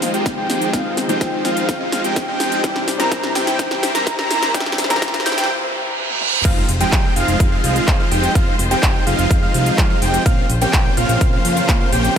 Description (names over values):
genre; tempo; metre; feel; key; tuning
EDM, festival progressive house; 126 BPM; 4/4; straight; F minor; A4 = 439 Hz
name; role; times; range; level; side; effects
warm grand piano; accompaniment; 0.0-6.5 s; C3 to C4; -26 LUFS; left 4 dB; sidechain pumping, ping-pong delay
clear studio string section; sustained chords; 0.0-12.2 s; C3 to C5; -28 LUFS; left 1 dB; vintage 12-bit sampler grit, sidechain pumping
wide unison lead; arpeggios; 0.0-12.1 s; F5 to Bb5; -23 LUFS; equal; sidechain pumping, ping-pong delay
big supersaw lead; riff; 0.0-12.1 s; E3 to Bb4; -22 LUFS; right 1 dB; sidechain pumping, low-pass filter, ping-pong delay
big-room dance drum kit; drums; 0.0-12.1 s; crash cymbal, handclaps, hi-hat, snare drum, toms; -24 LUFS; equal; overdrive, studio reverb
riser, reverse cymbal and impact; sound effects; 0.5-8.4 s; none; -26 LUFS; right 3 dB; none
electronic kick drum; drums; 0.3-11.8 s; none; -17 LUFS; equal; overdrive, studio reverb
fat analog bass; bass; 6.4-12.1 s; F1 to Bb2; -21 LUFS; equal; tube saturation, sidechain pumping
room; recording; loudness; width
light reverb, digital ambience; high-pass filter; -15 LUFS; side -8 dB against mid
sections
0.0-6.4 A section; 6.4-12.2 B section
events
build-up 0.0-6.4; drum fill 0.0-5.5, 6.1-6.4; filter sweep on supersaw synth 0.0-6.4; filter sweep on analog synth lead 0.0-6.4; filter sweep 0.0-6.4; reverse cymbal 5.5-6.4; drop 6.4-12.2; impact 6.4-8.4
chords
0.0 Fm7; 2.6 C; 6.4 Fm7; 10.3 Bbmadd9